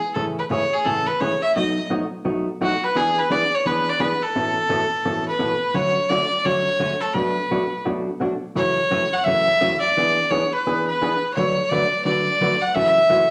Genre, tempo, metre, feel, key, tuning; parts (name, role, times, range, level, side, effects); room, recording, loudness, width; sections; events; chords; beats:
country; 171 BPM; 4/4; swing 65% on 8ths; A major; A4 = 440 Hz
clear fiddle; melody; 0.0-13.3 s; F#4 to F#5; -22 LUFS; equal
hollow-body jazz guitar; accompaniment; 0.2-13.2 s; F#2 to B4; -26 LUFS; equal
wet large studio reverb, RT60 0.8 s; -21 LUFS; mono
0.0-5.8 A section; 5.8-13.3 B section
0.1 Amaj7; 1.5 B7; 2.9 E7; 4.3 Aadd9; 5.8 Dmaj7; 7.2 Bm7; 8.6 F#m7; 10.0 E7; 11.4 D6; 12.8 F#m7
| 0.14 0.49 0.84 1.20 | 1.55 1.90 2.25 2.60 | 2.95 3.30 3.65 4.00 | 4.35 4.70 5.05 5.40 | 5.75 6.10 6.45 6.80 | 7.15 7.50 7.86 8.21 | 8.56 8.91 9.26 9.61 | 9.96 10.31 10.66 11.01 | 11.36 11.71 12.06 12.41 | 12.76 13.11